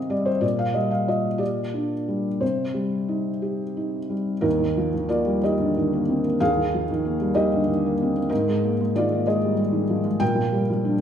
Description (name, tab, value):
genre	neoclassical minimalist piano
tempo	62 BPM (dotted quarters)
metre	6/8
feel	rubato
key	unclear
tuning	A4 = 443 Hz
part	felt-muted upright piano	solo	0.0-11.0 s	Eb2 to G5	-21 LUFS	equal	none
room	wet large studio reverb, RT60 1.2 s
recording	band playing live in one room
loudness	-21 LUFS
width	side -8 dB against mid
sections	0.0-4.5 A section; 4.5-11.0 B section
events	none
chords	0.4 Gm7/Bb; 2.4 Cm; 4.5 Eb; 8.3 Absus2; 10.2 Bb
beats	| 0.43 1.40 | 2.42 3.44 | 4.45 5.43 | 6.40 7.36 | 8.30 9.26 | 10.21